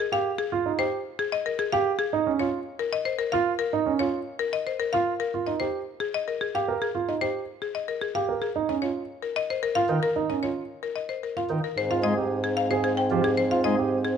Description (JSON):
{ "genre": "classical, minimalist pattern music", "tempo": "112 BPM", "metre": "3/4", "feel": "straight", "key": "Ab major", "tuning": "A4 = 440 Hz", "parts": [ { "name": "buzzing marimba with hard mallets", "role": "melody", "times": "0.0-14.2 s", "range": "Ab4 to G5", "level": "-28 LUFS", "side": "left 7 dB", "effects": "none" }, { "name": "warm grand piano", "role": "arpeggios", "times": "0.1-14.0 s", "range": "Db4 to C5", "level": "-27 LUFS", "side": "right 8 dB", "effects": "none" }, { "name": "pipe organ, cornet", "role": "accompaniment", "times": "9.9-13.7 s", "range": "Eb3 to Ab3", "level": "-30 LUFS", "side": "equal", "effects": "none" }, { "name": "mellow French horn", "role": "second line", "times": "11.8-14.2 s", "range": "C4", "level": "-28 LUFS", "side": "right 4 dB", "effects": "none" }, { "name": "mellow bassoon", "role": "bass", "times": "11.8-14.2 s", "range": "Ab2", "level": "-28 LUFS", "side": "equal", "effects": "none" } ], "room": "light reverb", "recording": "close, detailed microphones", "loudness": "-24 LUFS", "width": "side -7 dB against mid", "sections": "0.0-11.8 A section; 11.8-14.2 B section", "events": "none", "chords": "0.0 Abmaj7(no3); 2.1 Ebsus2; 5.3 Abmaj7sus2; 8.6 Ebsus2; 11.8 Abmaj7" }